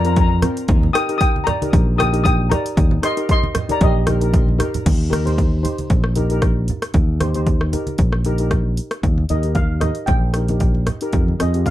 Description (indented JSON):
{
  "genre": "calypso",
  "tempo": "115 BPM",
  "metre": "4/4",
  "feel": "swing 54% on 16ths",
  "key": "Eb major",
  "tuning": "A4 = 440 Hz",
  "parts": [
    { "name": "steel pan", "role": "melody", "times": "0.0-4.3, 9.3-11.7 s", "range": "G4 to Eb6", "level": "-23 LUFS", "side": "left 2 dB", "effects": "tape echo" },
    { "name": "steel pan", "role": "accompaniment", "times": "0.0-11.7 s", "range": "C4 to C5", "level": "-25 LUFS", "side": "left 1 dB", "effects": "none" },
    { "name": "fingered electric bass", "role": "bass", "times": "0.0-11.7 s", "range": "Bb1 to F2", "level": "-19 LUFS", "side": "equal", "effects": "none" },
    { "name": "punchy analog drum machine", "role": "drums", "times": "0.0-11.7 s", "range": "crash cymbal, hi-hat, kick drum, rim click", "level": "-18 LUFS", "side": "equal", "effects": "overdrive" },
    { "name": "congas", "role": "percussion", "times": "0.4-11.5 s", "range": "none", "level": "-26 LUFS", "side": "right 3 dB", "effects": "none" }
  ],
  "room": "light reverb",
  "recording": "dark, warm production",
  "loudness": "-15 LUFS",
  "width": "side -14 dB against mid",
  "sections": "0.0-4.9 A section; 4.9-9.0 B section; 9.0-11.7 C section",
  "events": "drum fill 4.3-4.9",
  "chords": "0.0 Bbsus2; 0.7 Eb; 11.1 Fmadd9",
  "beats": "0.17 | 0.69 1.21 1.73 2.25 | 2.77 3.29 3.81 4.33 | 4.86 5.38 5.90 6.42 | 6.94 7.47 7.99 8.51 | 9.04 9.56 10.09 10.61 | 11.13 11.66"
}